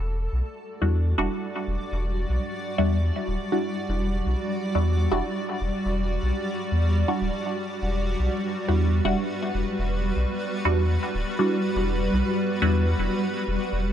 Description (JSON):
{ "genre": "dub techno", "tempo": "122 BPM", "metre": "4/4", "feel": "straight", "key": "E minor", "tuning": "A4 = 440 Hz", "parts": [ { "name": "granular cloud pad", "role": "sustained chords", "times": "0.0-13.9 s", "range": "G3 to D5", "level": "-28 LUFS", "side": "equal", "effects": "built-in reverb" }, { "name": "soft dub sub bass", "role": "bass", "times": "0.0-13.9 s", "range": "D1 to E2", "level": "-24 LUFS", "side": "equal", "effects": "tube saturation" }, { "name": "filtered dub chord stab", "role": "stabs", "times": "0.8-12.9 s", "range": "G3 to F#4", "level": "-28 LUFS", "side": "equal", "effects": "phaser, dub echo" } ], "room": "light reverb, digital ambience", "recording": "dry, gritty hardware recording, transformer saturation", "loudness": "-23 LUFS", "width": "side -10 dB against mid", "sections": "0.0-13.9 A section", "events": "none", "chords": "0.0 Em9", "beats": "0.44 0.94 1.43 | 1.92 2.41 2.90 3.39 | 3.89 4.38 4.87 5.36 | 5.85 6.34 6.84 7.33 | 7.82 8.31 8.80 9.29 | 9.79 10.28 10.77 11.26 | 11.75 12.25 12.74 13.23 | 13.72" }